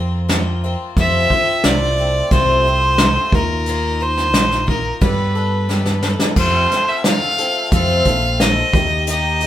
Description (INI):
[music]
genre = folk rock and heartland rock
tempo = 89 BPM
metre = 4/4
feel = straight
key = unclear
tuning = A4 = 440 Hz
[part]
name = picked twelve-string acoustic guitar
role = accompaniment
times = 0.0-9.5 s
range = F2 to A4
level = -23 LUFS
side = left 3 dB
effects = none
[part]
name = fingered electric bass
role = bass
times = 0.0-9.5 s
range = Bb1 to G2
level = -20 LUFS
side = equal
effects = none
[part]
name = soft brush drum kit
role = drums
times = 0.3-9.5 s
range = crash cymbal, hi-hat, kick drum, snare drum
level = -18 LUFS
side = equal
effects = none
[part]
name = rich fiddle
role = melody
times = 1.0-9.5 s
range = Bb4 to F5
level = -18 LUFS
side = equal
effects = none
[sound]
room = moderate studio reverb, RT60 0.8 s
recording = band playing live in one room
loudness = -14 LUFS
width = side -12 dB against mid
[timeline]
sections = 0.0-6.4 A section; 6.4-9.5 B section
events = drum fill 5.7-6.4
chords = 0.0 Bbsus2; 1.0 F; 3.3 Ebsus2; 5.0 Gadd9; 6.4 F; 8.7 Eb